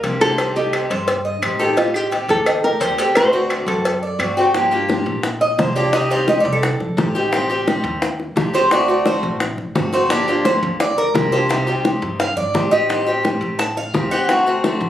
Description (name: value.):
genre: latin, Cuban son and guajira.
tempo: 172 BPM.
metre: 4/4.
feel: straight.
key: G minor.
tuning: A4 = 440 Hz.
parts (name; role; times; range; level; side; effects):
nylon-string guitar; melody; 0.0-4.2 s; F4 to D5; -19 LUFS; equal; none.
picked acoustic archtop guitar; accompaniment; 0.0-14.9 s; C3 to G4; -20 LUFS; left 1 dB; none.
Cuban tres; arpeggios; 0.0-14.4 s; Eb4 to A5; -20 LUFS; right 1 dB; none.
upright bass; bass; 0.0-14.9 s; G1 to Bb2; -27 LUFS; right 1 dB; none.
cowbell and bongos; percussion; 0.0-14.9 s; none; -22 LUFS; left 2 dB; none.
claves; percussion; 0.4-4.4 s; none; -26 LUFS; right 2 dB; none.
room: moderate large studio reverb, RT60 0.9 s.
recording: recorded on a phone in the room, club reverb.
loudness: -16 LUFS.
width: side -11 dB against mid.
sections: 0.0-4.5 A section; 4.5-14.9 B section.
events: Cuban tres solo 4.5-14.9.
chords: 0.4 Cm; 1.8 Am7b5; 3.2 D7; 4.5 Gm7; 5.9 Cm; 7.3 Am7b5; 8.7 D7; 10.1 Gm7; 11.5 Cm; 12.9 Am7b5; 14.3 D7.